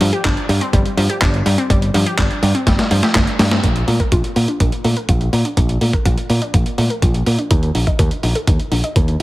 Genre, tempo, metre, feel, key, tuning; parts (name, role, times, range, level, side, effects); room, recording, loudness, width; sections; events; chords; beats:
italo disco; 124 BPM; 4/4; straight; A4 = 440 Hz
wide unison pluck; arpeggios; 0.0-9.2 s; F3 to Eb5; -22 LUFS; left 1 dB; tape echo
modern bright fingered electric bass; bass; 0.0-9.2 s; G1 to Bb2; -18 LUFS; equal; tube saturation
dusty soul sampler-style drum kit; drums; 0.0-9.2 s; handclaps, hi-hat, snare drum; -21 LUFS; equal; overdrive
electronic kick drum; drums; 0.2-9.1 s; -17 LUFS; equal; overdrive
light reverb, digital ambience; heavily compressed radio sound, multiband compression; -14 LUFS; side -18 dB against mid
0.0-3.6 A section; 3.6-9.2 B section
drum fill 2.7-3.6; band accent 3.5; filter sweep on synth arpeggio sound 3.6-9.2
0.0 G5; 3.6 N.C.; 7.5 Eb5
0.25 0.73 1.22 | 1.70 2.18 2.67 3.15 | 3.64 4.12 4.60 5.09 | 5.57 6.05 6.54 7.02 | 7.51 7.99 8.47 8.96